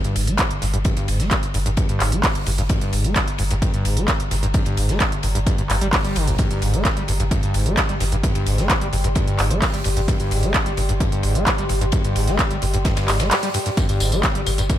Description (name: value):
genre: driving peak-time techno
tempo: 130 BPM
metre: 4/4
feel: straight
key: G phrygian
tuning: A4 = 440 Hz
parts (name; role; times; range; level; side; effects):
- overdriven acid bass; riff; 0.0-14.8 s; G1 to Bb3; -24 LUFS; equal; lush chorus, sidechain pumping, dub echo
- saturated sub bass; bass; 0.0-14.7 s; G1; -24 LUFS; equal; overdrive, sidechain pumping, low-pass filter
- techno drum kit; drums; 0.0-14.8 s; handclaps, hi-hat, tambourine; -24 LUFS; right 1 dB; sidechain pumping on hats, sidechain pumping on cymbals, sidechain pumping on perc
- warbly tape-like pad; texture; 0.2-14.8 s; G4 to C6; -32 LUFS; left 1 dB; chorus, built-in reverb, sidechain pumping
- oversized low-tuned drum kit; drums; 0.2-14.8 s; hi-hat, ride cymbal, snare drum; -32 LUFS; left 2 dB; high-pass filter on cymbals, high-pass filter on hats, high-pass filter on snare, high-pass filter on room
- electronic kick drum; drums; 0.4-14.8 s; none; -22 LUFS; equal; none
room: digital ambience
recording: none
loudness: -18 LUFS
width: side -12 dB against mid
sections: 0.0-14.8 A section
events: fade-in on ambient pad 0.0-14.8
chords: 0.0 Gm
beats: 0.39 | 0.85 1.31 1.77 2.23 | 2.70 3.16 3.62 4.08 | 4.54 5.00 5.47 5.93 | 6.39 6.85 7.31 7.77 | 8.23 8.70 9.16 9.62 | 10.08 10.54 11.00 11.47 | 11.93 12.39 12.85 13.31 | 13.77 14.23 14.70